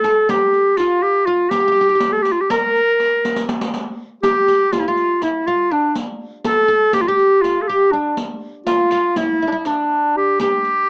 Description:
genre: Turkish makam ensemble.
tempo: 243 BPM (eighths).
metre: 9/8.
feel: straight.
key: G makam huseyni.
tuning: A4 = 442 Hz.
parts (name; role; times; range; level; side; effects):
warm clarinet; melody; 0.0-10.9 s; D4 to Bb4; -18 LUFS; equal; none.
oud; second line; 0.0-10.9 s; D4 to Bb4; -24 LUFS; equal; none.
riq; percussion; 0.0-10.7 s; none; -29 LUFS; equal; none.
room: little or no reverb.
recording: worn, warbling old tape, cassette tape, warbly pitch drift, small speaker sound.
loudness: -17 LUFS.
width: mono.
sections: 0.0-10.9 A section.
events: drum fill 3.2-3.7.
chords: none.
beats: 0.04 0.29 0.53 0.78 1.03 1.27 | 1.52 1.77 2.01 2.26 2.50 2.75 3.00 3.24 3.49 | 3.74 3.98 4.23 4.48 4.72 4.97 5.22 5.46 5.71 | 5.96 6.20 6.45 6.70 6.94 7.19 7.44 7.68 7.93 | 8.18 8.42 8.67 8.92 9.16 9.41 9.66 9.90 10.15 | 10.40 10.64 10.89.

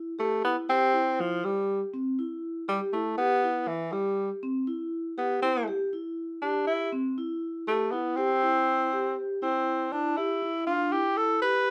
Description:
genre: progressive instrumental, progressive.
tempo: 240 BPM (eighths).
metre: 5/8.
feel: straight.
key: C major.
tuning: A4 = 442 Hz.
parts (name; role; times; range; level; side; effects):
vibraphone with medium mallets; arpeggios; 0.0-11.7 s; C4 to G4; -33 LUFS; equal; none.
breathy tenor saxophone; melody; 0.2-11.7 s; E3 to B4; -28 LUFS; equal; none.
room: moderate studio reverb, RT60 0.6 s.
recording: none.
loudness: -28 LUFS.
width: mono.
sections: 0.0-9.4 A section; 9.4-11.7 B section.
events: tenor saxophone solo 9.4-11.7.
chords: 0.0 C (rootless); 9.4 C.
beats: 0.18 0.43 | 0.68 0.93 1.18 1.43 1.68 | 1.93 2.18 2.43 2.68 2.93 | 3.18 3.43 3.68 3.93 4.18 | 4.43 4.68 4.93 5.18 5.43 | 5.68 5.93 6.18 6.43 6.68 | 6.93 7.17 7.42 7.67 7.92 | 8.17 8.42 8.67 8.92 9.17 | 9.42 9.67 9.92 10.17 10.42 | 10.67 10.92 11.17 11.42 11.67.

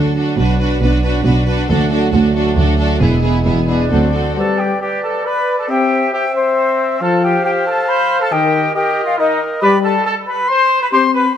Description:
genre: cinematic, heroic adventure film score.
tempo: 137 BPM.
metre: 3/4.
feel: straight.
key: D lydian.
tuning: A4 = 442 Hz.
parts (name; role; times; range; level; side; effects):
rich symphonic violin section; melody; 0.0-4.4 s; G#4 to B4; -25 LUFS; left 2 dB; none.
warm symphonic violin section; second line; 0.0-4.4 s; E4 to F#4; -24 LUFS; equal; none.
clear symphonic viola section; accompaniment; 0.0-4.4 s; B3 to D4; -21 LUFS; equal; none.
mellow trombone section; sustained chords; 0.0-4.1 s; E3 to D4; -21 LUFS; right 4 dB; none.
clear studio double bass section; bass; 0.0-4.3 s; E1 to D2; -16 LUFS; right 2 dB; none.
rich symphonic cello section; bass; 0.0-4.3 s; D2 to D3; -19 LUFS; right 2 dB; none.
silver concert flute; second line; 3.7-11.3 s; C5 to C6; -17 LUFS; left 4 dB; none.
warm trumpet section; stabs; 3.7-11.2 s; C4 to C5; -19 LUFS; right 1 dB; none.
clear clarinet; second line; 4.4-11.1 s; G4 to C5; -22 LUFS; left 2 dB; none.
warm oboe; second line; 4.4-11.1 s; C5 to F5; -22 LUFS; right 2 dB; none.
mellow French horn section; sustained chords; 4.4-11.3 s; Eb3 to C4; -19 LUFS; left 4 dB; none.
room: moderate scoring stage reverb, RT60 2.2 s.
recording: none.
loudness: -12 LUFS.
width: side -9 dB against mid.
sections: 0.0-4.4 A section; 4.4-11.4 B section.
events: none.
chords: 0.4 Bm; 1.7 D; 3.0 E; 3.9 D7; 4.4 G; 5.7 C; 7.0 F5; 8.3 Eb; 9.6 G5.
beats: | 0.39 0.83 1.26 | 1.70 2.14 2.58 | 3.02 3.46 3.92 | 4.37 4.81 5.25 | 5.69 6.13 6.57 | 7.01 7.44 7.88 | 8.31 8.75 9.18 | 9.61 10.05 10.49 | 10.92.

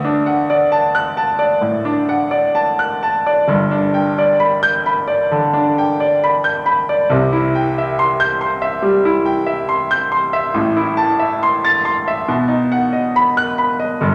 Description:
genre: classical, romantic character piece for solo piano.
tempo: 69 BPM.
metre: 4/4.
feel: uneven beats, rubato.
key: unclear.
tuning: A4 = 441 Hz.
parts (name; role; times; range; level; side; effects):
clear grand piano; solo; 0.0-14.1 s; G1 to A6; -16 LUFS; equal; none.
room: wet recital hall reverb, RT60 1.6 s.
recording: none.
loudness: -16 LUFS.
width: mono.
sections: 0.0-14.1 A section.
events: none.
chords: 0.0 D; 3.5 G; 7.1 C; 10.5 Am; 12.3 B.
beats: 0.71 1.63 2.57 | 3.51 4.43 5.32 6.22 | 7.11 7.99 8.83 9.68 | 10.54 11.41 12.26 13.13 | 13.99.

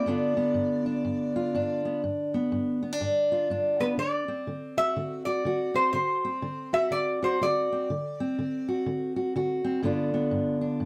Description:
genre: acoustic country blues, solo or duo.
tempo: 123 BPM.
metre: 4/4.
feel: swing 62% on 8ths.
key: unclear.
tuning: A4 = 440 Hz.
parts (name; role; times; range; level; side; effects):
lap resonator guitar; melody; 0.0-8.8 s; B4 to E5; -30 LUFS; equal; none.
fingerpicked steel-string acoustic guitar; accompaniment; 0.0-10.9 s; G2 to F#4; -29 LUFS; equal; none.
room: light reverb.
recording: close, detailed microphones.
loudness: -28 LUFS.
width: mono.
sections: 0.0-10.9 A section.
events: none.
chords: 0.1 G7; 4.0 D7; 9.8 G7.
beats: | 0.07 0.56 1.05 1.54 | 2.03 2.52 3.00 3.49 | 3.98 4.47 4.96 5.45 | 5.93 6.42 6.91 7.40 | 7.89 8.38 8.86 9.35 | 9.84 10.32 10.81.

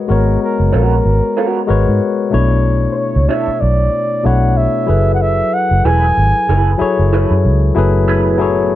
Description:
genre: R&B, neo-soul.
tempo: 94 BPM.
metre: 4/4.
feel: swing 56% on 16ths.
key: unclear.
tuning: A4 = 441 Hz.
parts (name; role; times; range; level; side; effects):
barky tine electric piano; accompaniment; 0.0-8.8 s; B2 to Eb5; -16 LUFS; left 5 dB; none.
breathy flugelhorn; melody; 0.1-7.1 s; Bb4 to Ab5; -18 LUFS; right 2 dB; none.
vintage muted fingered electric bass; bass; 0.1-8.8 s; Fb1 to Ab2; -14 LUFS; right 1 dB; none.
electric guitar through a small old amp; second line; 0.7-8.4 s; A3 to C#5; -20 LUFS; right 7 dB; wah, spring reverb.
mellow tonewheel organ; sustained chords; 7.8-8.8 s; A2 to Fb4; -24 LUFS; right 2 dB; slow rotary speaker, chorus vibrato.
room: light reverb.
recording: dark, warm production.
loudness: -11 LUFS.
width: side -13 dB against mid.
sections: 0.0-7.7 A section; 7.7-8.8 B section.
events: none.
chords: 0.0 Abm11; 2.3 Bm11; 4.9 Gbm11.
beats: | 0.09 0.73 1.36 2.00 | 2.64 3.28 3.92 4.56 | 5.19 5.83 6.47 7.11 | 7.75 8.39.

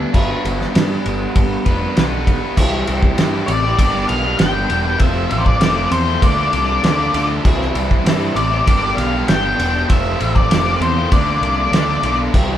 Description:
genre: indie rock.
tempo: 98 BPM.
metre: 4/4.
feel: straight.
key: unclear.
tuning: A4 = 438 Hz.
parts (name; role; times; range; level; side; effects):
biting overdriven guitar; riff; 0.0-12.6 s; F2 to B4; -21 LUFS; equal; none.
fuzz picked electric bass; bass; 0.0-12.6 s; E1 to G2; -21 LUFS; equal; overdrive.
cloth-damped thuddy drum kit; drums; 0.1-12.5 s; crash cymbal, kick drum, ride cymbal, snare drum; -17 LUFS; equal; none.
octave-fuzz lead guitar; melody; 3.5-12.2 s; C5 to G5; -19 LUFS; left 2 dB; distortion.
room: light reverb.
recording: band playing live in one room.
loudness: -14 LUFS.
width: side -11 dB against mid.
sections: 0.1-2.6 A section; 2.6-12.6 B section.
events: none.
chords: 0.1 G; 2.6 C; 3.8 G; 5.0 F; 6.2 Dm; 7.5 C; 8.7 G; 9.9 F; 11.1 Dm.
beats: | 0.14 0.75 1.36 1.97 | 2.58 3.19 3.79 4.40 | 5.01 5.62 6.23 6.84 | 7.45 8.06 8.67 9.28 | 9.89 10.51 11.12 11.73 | 12.34.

